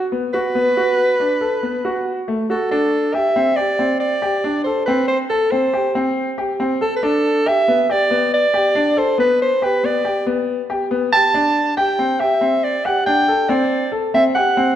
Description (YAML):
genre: contemporary instrumental, contemporary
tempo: 139 BPM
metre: 5/4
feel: straight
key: unclear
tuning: A4 = 441 Hz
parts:
  - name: warm soprano saxophone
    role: melody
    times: 0.0-14.8 s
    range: F#4 to A5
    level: -17 LUFS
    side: right 1 dB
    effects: none
  - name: clear grand piano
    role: arpeggios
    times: 0.1-14.8 s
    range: A3 to A4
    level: -19 LUFS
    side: left 2 dB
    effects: none
room: wet recital hall reverb, RT60 1.6 s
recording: dark, warm production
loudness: -15 LUFS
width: side -10 dB against mid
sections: 0.0-2.7 A section; 2.7-14.8 B section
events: none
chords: 0.0 N.C.; 0.6 B7(no3); 2.7 D7sus4; 7.0 A9sus4/B (rootless); 11.3 Csus2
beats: 0.12 | 0.56 0.99 1.42 1.85 2.29 | 2.72 3.15 3.58 4.01 4.44 | 4.88 5.31 5.74 6.17 6.60 | 7.03 7.46 7.89 8.32 8.76 | 9.19 9.62 10.05 10.48 10.91 | 11.34 11.77 12.20 12.63 13.07 | 13.50 13.93 14.36